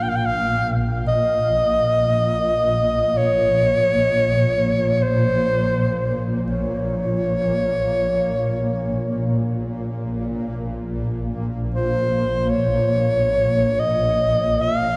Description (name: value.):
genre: world meditative, free-time meditation music.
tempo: free time.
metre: none.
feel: none.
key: Bb minor.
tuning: A4 = 440 Hz.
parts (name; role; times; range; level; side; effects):
warm alto saxophone; melody; 0.0-15.0 s; C5 to G5; -22 LUFS; equal; delay.
shimmering ambient pad; drone; 0.0-15.0 s; Bb1 to Bb2; -24 LUFS; equal; chorus, built-in reverb.
room: wet cathedral reverb, RT60 5.4 s.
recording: dark, warm production.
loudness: -20 LUFS.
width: mono.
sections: 0.0-15.0 A section.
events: none.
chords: none.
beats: free time.